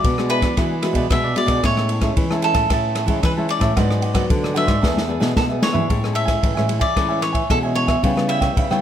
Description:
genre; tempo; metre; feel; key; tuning
samba and choro; 113 BPM; 4/4; straight; unclear; A4 = 440 Hz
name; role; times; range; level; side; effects
cavaquinho; melody; 0.0-8.8 s; A4 to E5; -24 LUFS; equal; none
nylon-string guitar; accompaniment; 0.0-8.8 s; G#2 to G#4; -25 LUFS; left 3 dB; none
nylon-string guitar; bass; 0.0-8.8 s; E2 to E3; -22 LUFS; equal; none
open jazz drum kit; drums; 0.0-8.8 s; kick drum, ride cymbal, rim click, snare drum, toms; -21 LUFS; equal; none
cavaquinho; accompaniment; 0.2-8.8 s; D4 to A5; -26 LUFS; right 4 dB; none
room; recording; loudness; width
light reverb; none; -16 LUFS; side -10 dB against mid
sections
0.0-5.9 A section; 5.9-8.8 B section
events
drum fill 4.8-5.9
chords
0.0 E9; 1.6 Amaj7; 3.8 G#m7b5; 4.8 E7; 5.9 Amaj7; 8.0 C#m7b5

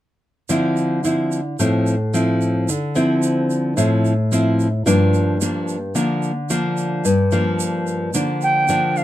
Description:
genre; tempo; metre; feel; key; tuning
bossa nova; 110 BPM; 4/4; straight; D minor; A4 = 437 Hz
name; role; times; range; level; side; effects
nylon-string guitar; accompaniment; 0.5-9.0 s; G2 to E4; -17 LUFS; equal; none
egg shaker; percussion; 0.5-9.0 s; none; -29 LUFS; right 8 dB; none
reedy silver concert flute; melody; 8.4-9.0 s; F5 to G5; -16 LUFS; right 2 dB; none
room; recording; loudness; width
moderate booth ambience, RT60 0.2 s; none; -17 LUFS; side -13 dB against mid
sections
0.5-9.0 A section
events
none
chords
0.5 Dm9; 4.9 Gm7

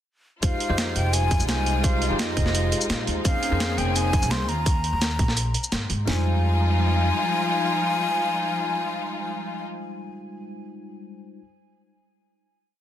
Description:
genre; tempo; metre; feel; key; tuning
liquid drum and bass; 170 BPM; 4/4; straight; F minor; A4 = 438 Hz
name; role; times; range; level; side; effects
breathy mellow silver concert flute; melody; 0.4-9.7 s; Eb5 to C6; -28 LUFS; left 2 dB; ping-pong delay
bell-like tine electric piano; accompaniment; 0.4-11.4 s; G3 to C5; -31 LUFS; equal; phaser
rich symphonic string section; sustained chords; 0.4-9.7 s; F3 to Ab4; -29 LUFS; left 2 dB; sidechain pumping
upright bass; bass; 0.4-7.1 s; F1 to Bb2; -24 LUFS; equal; none
breakbeat sampler-style drum kit; drums; 0.4-6.0 s; hi-hat, shaker, snare drum; -28 LUFS; right 1 dB; none
garage drum kit; drums; 0.4-6.2 s; kick drum, snare drum; -24 LUFS; equal; none
room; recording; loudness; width
light reverb, small room ambience; dense, heavily limited modern master; -21 LUFS; side -11 dB against mid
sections
0.4-6.1 drop; 6.1-8.9 final chord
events
drop 0.4-6.1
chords
0.4 Fm9; 3.3 Bbm11/F; 4.5 Ebsus4; 6.1 Fm9

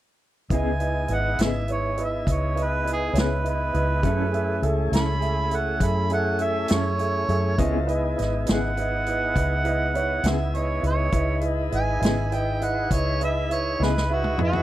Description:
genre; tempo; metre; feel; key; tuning
slow blues; 68 BPM (dotted quarters); 12/8; straight; C# minor; A4 = 440 Hz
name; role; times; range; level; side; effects
mellow harmonica; second line; 0.5-14.6 s; F#4 to B5; -28 LUFS; right 3 dB; none
mellow electric guitar; accompaniment; 0.5-14.0 s; C#3 to A4; -28 LUFS; left 3 dB; tremolo
warm grand piano; accompaniment; 0.5-14.6 s; E4 to F#5; -28 LUFS; right 3 dB; none
tonewheel organ; sustained chords; 0.5-14.6 s; A3 to B4; -31 LUFS; left 2 dB; slow rotary speaker
vintage muted fingered electric bass; bass; 0.5-14.6 s; G#1 to F#2; -26 LUFS; equal; none
vintage drum kit; drums; 0.5-14.6 s; hi-hat, kick drum, snare drum, toms; -26 LUFS; equal; none
room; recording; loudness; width
little or no reverb; dry, close 1970s-style studio recording; -21 LUFS; side -14 dB against mid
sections
0.5-14.6 A section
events
harmonica solo 0.5-14.6; drum fill 13.8-14.6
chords
0.5 C#m7; 4.0 F#m7; 7.6 C#m7

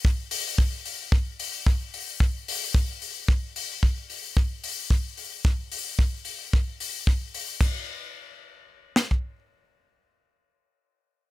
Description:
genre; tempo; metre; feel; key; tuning
nu-disco, nu disco; 111 BPM; 4/4; swing 55% on 16ths; none; none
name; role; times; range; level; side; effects
tight funk drum kit; drums; 0.0-9.2 s; kick drum, snare drum; -21 LUFS; equal; none
tight funk drum kit; drums; 0.3-7.7 s; crash cymbal, hi-hat; -32 LUFS; left 7 dB; none
room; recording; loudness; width
little or no reverb; none; -24 LUFS; side -17 dB against mid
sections
0.0-7.6 A section; 7.6-11.3 B section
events
none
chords
none

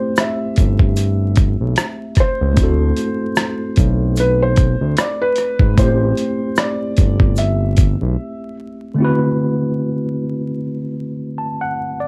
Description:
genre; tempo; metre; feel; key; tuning
lo-fi hip hop; 75 BPM; 4/4; swing 55% on 16ths; unclear; A4 = 440 Hz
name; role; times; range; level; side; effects
felt-muted upright piano; melody; 0.0-8.5 s; B4 to E5; -25 LUFS; equal; low-pass filter
tine electric piano; accompaniment; 0.0-12.1 s; D3 to A5; -24 LUFS; equal; overdrive, cassette tape, low-pass filter
dusty soul sampler-style drum kit; drums; 0.2-8.0 s; hi-hat, kick drum, rim click; -17 LUFS; equal; overdrive
tube shaker; percussion; 0.2-8.0 s; none; -40 LUFS; equal; none
smooth gliding synth bass; bass; 0.6-8.2 s; G1 to D2; -19 LUFS; equal; none
room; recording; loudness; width
light reverb; vinyl crackle, faint mains hum; -17 LUFS; mono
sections
0.0-9.0 A section; 9.0-12.1 B section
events
break 8.2-9.0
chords
0.0 Am7; 2.6 D13; 5.8 Am7; 9.0 D13

